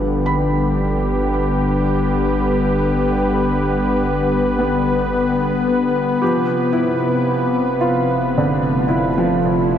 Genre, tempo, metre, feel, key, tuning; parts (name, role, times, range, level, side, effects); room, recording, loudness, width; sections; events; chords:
ambient; 56 BPM; 4/4; straight; A4 = 440 Hz
warm analog pad; sustained chords; 0.0-9.8 s; C3 to B4; -17 LUFS; left 1 dB; chorus, shimmer reverb
felt-muted upright piano; arpeggios; 0.0-9.8 s; D3 to B5; -22 LUFS; right 1 dB; tape echo, shimmer reverb
round analog bass; bass; 0.0-9.8 s; F1 to G1; -27 LUFS; equal
overtone-sweeping drone; drone; 6.8-9.8 s; F3; -27 LUFS; right 1 dB; chorus, built-in reverb, phaser
moderate huge ambient reverb, RT60 8.8 s; -16 LUFS; side -9 dB against mid
0.0-9.8 A section
0.0 G; 6.2 Fmaj7